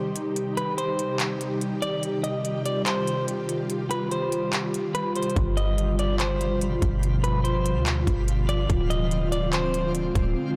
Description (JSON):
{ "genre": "hip hop, atmospheric cloud-rap", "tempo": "144 BPM", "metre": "4/4", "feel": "half-time", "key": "C harmonic minor", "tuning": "A4 = 440 Hz", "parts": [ { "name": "ethereal airy pad", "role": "sustained chords", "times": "0.0-10.6 s", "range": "B2 to G4", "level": "-29 LUFS", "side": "equal", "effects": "ensemble chorus, built-in reverb" }, { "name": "trap drum kit", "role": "drums", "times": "0.2-10.3 s", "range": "handclaps, hi-hat, kick drum", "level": "-32 LUFS", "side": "equal", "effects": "none" }, { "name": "clean electric guitar", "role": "melody", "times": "0.6-9.9 s", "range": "B4 to Eb5", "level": "-32 LUFS", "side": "equal", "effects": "spring reverb, low-pass filter, tape echo" }, { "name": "warm 808-style bass", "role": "bass", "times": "5.4-10.4 s", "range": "D1 to D2", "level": "-28 LUFS", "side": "equal", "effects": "none" }, { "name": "twinkling granular texture", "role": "texture", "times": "5.7-10.6 s", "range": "G3 to D6", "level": "-42 LUFS", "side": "equal", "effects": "built-in reverb" } ], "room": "light reverb, digital ambience", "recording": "blown-out, overdriven recording, overdrive", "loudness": "-25 LUFS", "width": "mono", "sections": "0.0-10.6 A section", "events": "break 0.0-5.4, 10.4", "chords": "0.0 Cm; 5.4 G7; 8.7 Dm7b5", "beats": "| 0.36 0.78 1.20 1.61 | 2.03 2.45 2.86 3.28 | 3.70 4.11 4.53 4.95 | 5.36 5.78 6.20 6.61 | 7.03 7.45 7.86 8.28 | 8.70 9.11 9.53 9.95 | 10.36" }